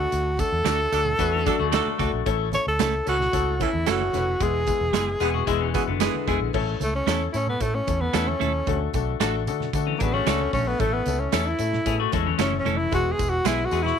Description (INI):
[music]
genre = uptempo 1960s-style soul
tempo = 113 BPM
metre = 4/4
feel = straight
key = A major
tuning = A4 = 439 Hz
[part]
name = breathy tenor saxophone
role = melody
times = 0.0-14.0 s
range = A3 to C#5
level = -25 LUFS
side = equal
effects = none
[part]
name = clear upright piano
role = accompaniment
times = 0.0-13.9 s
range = G#3 to B4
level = -28 LUFS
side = left 14 dB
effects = none
[part]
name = vintage muted fingered electric bass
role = bass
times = 0.0-13.9 s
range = E1 to D3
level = -28 LUFS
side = equal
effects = none
[part]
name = natural country drum kit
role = drums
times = 0.1-13.9 s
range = crash cymbal, hi-hat, kick drum, snare drum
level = -30 LUFS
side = right 4 dB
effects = none
[part]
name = congas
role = percussion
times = 0.1-14.0 s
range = none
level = -38 LUFS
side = right 9 dB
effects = none
[part]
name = tambourine and handclaps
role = percussion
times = 0.1-13.8 s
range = none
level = -37 LUFS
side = right 12 dB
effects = none
[part]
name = clean electric guitar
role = stabs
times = 0.6-13.6 s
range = G#3 to A4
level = -28 LUFS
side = right 16 dB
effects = none
[part]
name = bright saxophone section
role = second line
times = 0.7-6.4 s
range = E3 to A4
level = -30 LUFS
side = right 14 dB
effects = none
[part]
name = semi-hollow electric guitar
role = riff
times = 1.3-6.5, 9.9-14.0 s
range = D3 to G#4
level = -29 LUFS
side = left 16 dB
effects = spring reverb
[sound]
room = small room ambience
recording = 1960s-style stereo with parts hard left and right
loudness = -21 LUFS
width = side -7 dB against mid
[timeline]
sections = 0.0-6.5 A section; 6.5-14.0 B section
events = tenor saxophone solo 6.5-14.0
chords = 0.0 D; 2.3 A; 4.4 E; 6.5 A; 8.7 D; 10.8 A; 12.9 E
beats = | 0.12 0.66 1.19 1.73 | 2.27 2.80 3.34 3.87 | 4.41 4.94 5.47 6.01 | 6.54 7.08 7.61 8.14 | 8.67 9.21 9.74 10.27 | 10.80 11.33 11.86 12.39 | 12.93 13.46 13.99